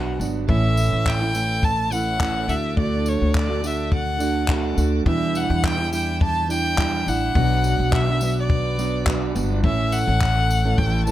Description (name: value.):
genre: acoustic pop.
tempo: 105 BPM.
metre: 4/4.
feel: swing 55% on 16ths.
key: A mixolydian.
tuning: A4 = 443 Hz.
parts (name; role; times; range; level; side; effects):
rich violin; melody; 0.0-11.1 s; C#5 to A5; -25 LUFS; left 1 dB; none.
fingerpicked plugged-in steel-string acoustic guitar; accompaniment; 0.0-11.1 s; E2 to A4; -25 LUFS; right 5 dB; none.
upright bass; bass; 0.0-11.1 s; G1 to E2; -23 LUFS; left 1 dB; none.
compact cocktail drum kit; drums; 0.2-11.1 s; handclaps, kick drum, tambourine; -25 LUFS; left 1 dB; none.
tonewheel organ; sustained chords; 0.5-11.1 s; D3 to G5; -35 LUFS; left 1 dB; overdrive, slow rotary speaker.
room: light reverb.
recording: close, detailed microphones.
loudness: -18 LUFS.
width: side -13 dB against mid.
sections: 0.0-9.6 A section; 9.6-11.1 B section.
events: none.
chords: 0.5 A; 2.5 D; 5.1 Em7; 7.3 Bm; 9.6 A.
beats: | 0.49 1.06 1.63 2.21 | 2.78 3.35 3.92 4.49 | 5.06 5.63 6.21 6.78 | 7.35 7.92 8.49 9.06 | 9.63 10.21 10.78.